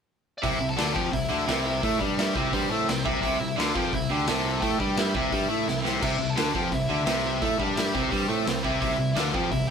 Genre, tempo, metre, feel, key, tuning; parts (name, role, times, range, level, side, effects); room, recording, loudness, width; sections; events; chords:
punk rock; 172 BPM; 4/4; straight; C major; A4 = 439 Hz
smooth overdriven lead guitar; melody; 0.4-9.7 s; C4 to A5; -30 LUFS; left 1 dB
overdriven electric guitar; riff; 0.4-9.7 s; C3 to A3; -29 LUFS; right 6 dB
tight distorted guitar; riff; 0.4-9.7 s; C3 to A3; -29 LUFS; left 7 dB; distortion
modern bright picked electric bass; bass; 0.4-9.7 s; C2 to A2; -32 LUFS; equal
raw garage drum kit; drums; 0.4-9.6 s; crash cymbal, hi-hat, kick drum, snare drum; -30 LUFS; equal
moderate small room reverb, RT60 0.5 s; band playing live in one room; -23 LUFS; side -7 dB against mid
0.4-9.7 A section
drum fill 5.7-6.0
0.4 C